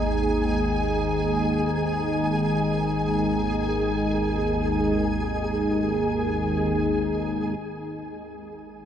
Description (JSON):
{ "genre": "ambient", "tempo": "free time", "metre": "none", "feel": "none", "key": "unclear", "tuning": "A4 = 440 Hz", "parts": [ { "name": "sweeping resonant pad", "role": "sustained chords", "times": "0.0-8.9 s", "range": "G#3 to G#4", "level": "-26 LUFS", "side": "equal", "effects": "chorus" }, { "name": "organ-like drone", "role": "drone", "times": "0.0-8.9 s", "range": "G#1 to D#2", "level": "-26 LUFS", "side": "equal", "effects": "ensemble chorus, built-in reverb" }, { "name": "flickering grainy texture", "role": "texture", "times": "0.0-8.9 s", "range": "G#4 to G#5", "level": "-30 LUFS", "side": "equal", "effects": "built-in reverb" } ], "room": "wet huge ambient reverb, RT60 9.2 s", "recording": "none", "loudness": "-22 LUFS", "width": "side -9 dB against mid", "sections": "0.0-7.6 A section; 7.6-8.9 B section", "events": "none", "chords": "0.0 G#5" }